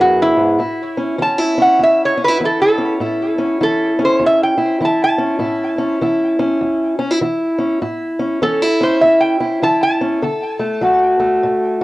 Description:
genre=acoustic country blues, solo or duo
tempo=100 BPM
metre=4/4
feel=swing 62% on 8ths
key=A major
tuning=A4 = 439 Hz
part: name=lap resonator guitar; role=melody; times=0.0-11.0 s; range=E4 to A5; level=-15 LUFS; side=right 1 dB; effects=cassette tape, tape echo
part: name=fingerpicked steel-string acoustic guitar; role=accompaniment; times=0.0-11.8 s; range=E2 to A4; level=-16 LUFS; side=equal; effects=cassette tape
room=moderate studio ambience, RT60 0.5 s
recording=home recording on cassette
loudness=-13 LUFS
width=side -18 dB against mid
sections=0.6-11.8 A section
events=resonator guitar played with a steel bar solo 0.6-11.8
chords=0.0 E; 0.6 A; 10.2 D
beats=0.00 | 0.60 1.20 1.80 2.41 | 3.01 3.61 4.21 4.81 | 5.42 6.02 6.62 7.22 | 7.82 8.42 9.02 9.62 | 10.22 10.82 11.43

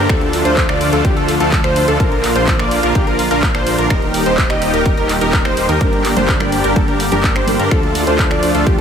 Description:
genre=EDM, festival progressive house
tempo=126 BPM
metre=4/4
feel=straight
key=G minor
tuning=A4 = 437 Hz
part: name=lush unison pad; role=sustained chords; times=0.0-8.8 s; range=D3 to G4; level=-20 LUFS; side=equal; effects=chorus, sidechain pumping
part: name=plucky unison lead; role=arpeggios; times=0.0-8.8 s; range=G4 to Eb5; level=-20 LUFS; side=equal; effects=cassette tape, sidechain pumping, ping-pong delay
part: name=dense compressed supersaw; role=riff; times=0.0-8.8 s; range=D4 to Eb5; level=-18 LUFS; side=equal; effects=sidechain pumping, ping-pong delay
part: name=wide detuned saw bass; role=bass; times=0.0-8.8 s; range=Eb1 to G2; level=-22 LUFS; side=equal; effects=chorus, sidechain pumping
part: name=big-room dance drum kit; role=drums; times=0.1-8.8 s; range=finger snaps, handclaps, hi-hat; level=-22 LUFS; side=equal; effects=none
part: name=electronic kick drum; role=drums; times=0.1-8.8 s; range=none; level=-17 LUFS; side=equal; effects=none
part: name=dark baby grand piano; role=accompaniment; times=5.8-8.8 s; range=G2 to Bb4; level=-22 LUFS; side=equal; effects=sidechain pumping, ping-pong delay
room=moderate plate reverb, RT60 2.0 s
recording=dreamy mix soaked in reverb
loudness=-12 LUFS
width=side -7 dB against mid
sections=0.0-8.8 A section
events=none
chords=0.1 Dm; 2.0 Bb; 3.9 Eb; 5.8 Gm; 7.7 Dm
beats=| 0.09 0.57 1.05 1.52 | 2.00 2.48 2.95 3.43 | 3.90 4.38 4.86 5.33 | 5.81 6.29 6.76 7.24 | 7.71 8.19 8.67

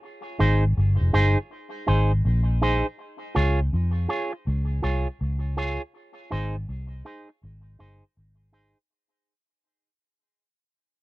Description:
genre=roots reggae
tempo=81 BPM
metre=4/4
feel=swing 65% on 16ths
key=unclear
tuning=A4 = 437 Hz
part: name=electric guitar with an envelope filter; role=accompaniment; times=0.4-8.8 s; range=Eb4 to Db5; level=-27 LUFS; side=right 2 dB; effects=tape echo
part: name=vintage muted fingered electric bass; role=bass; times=0.4-8.7 s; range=F1 to F2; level=-22 LUFS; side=equal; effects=none
room=little or no reverb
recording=dry, close 1970s-style studio recording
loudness=-22 LUFS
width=side -19 dB against mid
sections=0.0-3.0 A section; 3.0-8.9 B section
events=fade-out 3.0-8.9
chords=0.0 Ab; 3.0 Db; 5.9 Ab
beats=| 0.02 0.76 1.50 2.23 | 2.98 3.71 4.45 5.19 | 5.93 6.67 7.41 8.15

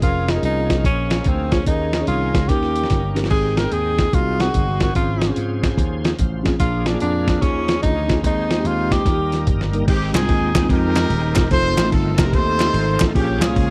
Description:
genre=uptempo gospel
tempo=146 BPM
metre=4/4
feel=swing 64% on 8ths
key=Ab major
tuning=A4 = 440 Hz
part: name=breathy tenor saxophone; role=melody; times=0.0-9.5 s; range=C4 to Bb4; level=-26 LUFS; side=equal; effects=tape echo
part: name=mellow tine electric piano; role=accompaniment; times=0.0-13.7 s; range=Ab2 to G5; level=-27 LUFS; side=equal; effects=none
part: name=bright tonewheel organ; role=sustained chords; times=0.0-13.7 s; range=Db3 to G5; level=-33 LUFS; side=equal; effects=fast rotary speaker, chorus vibrato
part: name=slap bass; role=bass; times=0.0-13.7 s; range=Eb1 to Ab2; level=-25 LUFS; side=equal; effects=none
part: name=dusty soul sampler-style drum kit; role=drums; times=0.0-13.7 s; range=crash cymbal, hi-hat, kick drum, ride cymbal, snare drum, toms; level=-22 LUFS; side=equal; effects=none
part: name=warm horn section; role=melody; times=9.9-13.7 s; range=C4 to C5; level=-24 LUFS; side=equal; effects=none
part: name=group handclap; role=percussion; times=10.1-13.5 s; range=none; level=-31 LUFS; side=equal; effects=none
room=little or no reverb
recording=dry, close 1970s-style studio recording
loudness=-19 LUFS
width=mono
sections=0.0-9.9 A section; 9.9-13.7 B section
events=drum fill 2.5-3.3, 9.1-9.9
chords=0.0 Bbm7/F; 1.7 Eb7sus4; 2.5 Eb7; 3.3 Abmaj7; 4.1 Ab7/C; 5.0 Dbmaj7/Ab; 6.6 Bb7; 7.4 Eb9sus4; 8.2 Ab/Eb; 9.1 Eb; 9.9 Abmaj7; 11.5 F7; 13.2 Bbm7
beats=| 0.03 0.44 0.85 1.26 | 1.67 2.08 2.49 2.90 | 3.31 3.72 4.13 4.54 | 4.95 5.36 5.77 6.18 | 6.59 7.01 7.42 7.83 | 8.24 8.65 9.06 9.47 | 9.88 10.29 10.70 11.11 | 11.52 11.93 12.34 12.74 | 13.15 13.56

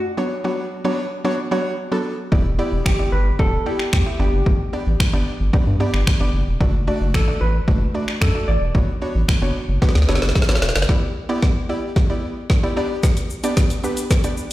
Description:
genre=dance-pop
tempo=112 BPM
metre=4/4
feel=straight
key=E dorian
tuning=A4 = 440 Hz
part: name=hollow-body jazz guitar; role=melody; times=0.0-10.3 s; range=F#4 to D5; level=-27 LUFS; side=left 1 dB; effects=tape echo
part: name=mallet-like synth pluck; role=accompaniment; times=0.2-14.5 s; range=F#3 to E5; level=-24 LUFS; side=equal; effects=chorus, sidechain pumping
part: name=round analog bass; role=bass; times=2.3-10.9 s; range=E1 to G2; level=-19 LUFS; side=equal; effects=sidechain pumping
part: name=deep house drum kit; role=drums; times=2.3-14.5 s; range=finger snaps, hi-hat, kick drum, shaker, snare drum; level=-18 LUFS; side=equal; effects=none
room=light reverb, digital ambience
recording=played on a big sound system in a bare room, stone room reverb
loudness=-17 LUFS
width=side -16 dB against mid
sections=0.0-10.9 A section; 10.9-14.5 B section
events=drum fill 9.8-10.9, 10.9-14.5; build-up 10.9-14.5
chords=0.2 Bmadd9/F#; 2.3 Em7; 4.2 G; 6.6 D/F#; 8.7 Bmadd9/F#; 10.9 Em7; 12.8 G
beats=| 0.18 0.71 1.25 1.78 | 2.32 2.86 3.39 3.93 | 4.46 5.00 5.54 6.07 | 6.61 7.14 7.68 8.21 | 8.75 9.29 9.82 10.36 | 10.89 11.43 11.96 12.50 | 13.04 13.57 14.11

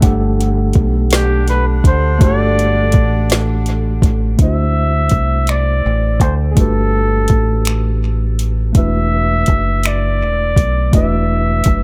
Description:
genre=slow six-eight R&B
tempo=55 BPM (dotted quarters)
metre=6/8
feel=straight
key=unclear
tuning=A4 = 440 Hz
part: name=tine electric piano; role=accompaniment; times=0.0-11.8 s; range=A3 to F#5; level=-23 LUFS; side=equal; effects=overdrive, dub echo
part: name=deep dub fingered electric bass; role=bass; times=0.0-11.8 s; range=E1 to D2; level=-18 LUFS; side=equal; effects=none
part: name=smooth R&B drum kit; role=drums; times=0.0-11.8 s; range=finger snaps, hi-hat, kick drum, snare drum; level=-16 LUFS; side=equal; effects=none
part: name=warm flugelhorn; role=melody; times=1.1-11.8 s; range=G4 to E5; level=-22 LUFS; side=equal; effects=dub echo
part: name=warm horn section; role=stabs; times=1.1-4.0 s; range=D4 to F#5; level=-30 LUFS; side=equal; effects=dub echo
room=little or no reverb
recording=echo-heavy mix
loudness=-15 LUFS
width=mono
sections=0.0-4.4 A section; 4.4-11.8 B section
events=none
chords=0.0 Gmaj9; 4.4 D9; 6.6 Gmaj9; 8.8 E9sus4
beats=| 0.02 1.11 | 2.21 3.30 | 4.39 5.48 | 6.57 7.66 | 8.75 9.84 | 10.93

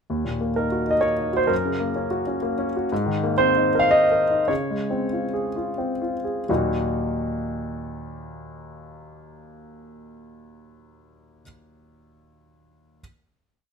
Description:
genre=neoclassical minimalist piano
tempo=83-129 BPM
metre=3/4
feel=rubato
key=Eb dorian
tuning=A4 = 436 Hz
part: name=warm concert grand piano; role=solo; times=0.1-13.0 s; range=Eb2 to F5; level=-21 LUFS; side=equal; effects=none
room=moderate studio reverb, RT60 0.9 s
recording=band playing live in one room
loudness=-21 LUFS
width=side -6 dB against mid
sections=0.1-6.5 A section; 6.5-10.8 final chord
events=slowing down 2.2-6.5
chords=0.1 Ebm; 1.5 Gb; 2.9 Abadd9; 4.5 Dbmaj7; 6.5 Ebm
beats=| 0.08 0.55 1.03 | 1.51 1.97 2.44 | 2.91 3.40 3.92 | 4.49 5.11 5.77 | 6.48 7.20 7.91 | 8.62 9.33 10.04

